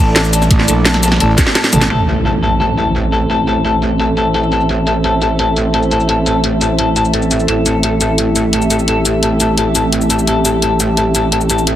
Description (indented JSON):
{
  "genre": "dark technical drum and bass",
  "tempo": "172 BPM",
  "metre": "4/4",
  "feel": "straight",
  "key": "A minor",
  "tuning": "A4 = 441 Hz",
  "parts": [
    { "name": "dark analog pad", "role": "sustained chords", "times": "0.0-11.8 s", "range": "A3 to E5", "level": "-18 LUFS", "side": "right 1 dB", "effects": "chorus, sidechain pumping" },
    { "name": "semi-hollow electric guitar", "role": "arpeggios", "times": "0.0-11.6 s", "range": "A4 to A5", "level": "-18 LUFS", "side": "left 4 dB", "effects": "sidechain pumping, tape echo" },
    { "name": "growling FM bass", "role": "bass", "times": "0.0-1.9 s", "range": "A1 to Bb1", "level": "-14 LUFS", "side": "right 1 dB", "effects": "none" },
    { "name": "crunchy breakbeat drum kit", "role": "drums", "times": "0.2-1.8 s", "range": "ride cymbal, snare drum", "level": "-26 LUFS", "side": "right 1 dB", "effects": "none" },
    { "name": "drum and bass drum kit", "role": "drums", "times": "0.2-11.7 s", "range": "cabasa, hi-hat, snare drum, toms", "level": "-16 LUFS", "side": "equal", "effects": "low-pass filter on snare, low-pass filter on hats, low-pass filter on perc, low-pass filter on toms, low-pass filter on room" },
    { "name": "electronic kick drum", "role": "drums", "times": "0.5-1.4 s", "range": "none", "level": "-12 LUFS", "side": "right 1 dB", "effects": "none" },
    { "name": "metallic wobble bass", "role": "bass", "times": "1.9-11.8 s", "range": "A1", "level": "-17 LUFS", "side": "equal", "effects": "chorus, tube saturation" },
    { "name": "impact", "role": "sound effects", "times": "1.9-3.3 s", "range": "none", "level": "-20 LUFS", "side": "right 1 dB", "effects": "none" },
    { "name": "warbly tape-like pad", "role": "texture", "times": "2.7-11.8 s", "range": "C4 to E5", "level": "-21 LUFS", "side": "right 1 dB", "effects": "chorus, built-in reverb, sidechain pumping" }
  ],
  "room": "moderate lush hall reverb, RT60 1.8 s",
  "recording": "heavily compressed radio sound",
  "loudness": "-11 LUFS",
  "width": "side -11 dB against mid",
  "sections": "0.0-1.9 A section; 1.9-11.8 B section",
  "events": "drop 0.0-1.9; drum fill 1.4-1.9; impact 1.9-3.3; filter sweep on drum 1.9-11.8",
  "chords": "0.0 A5; 1.9 Am"
}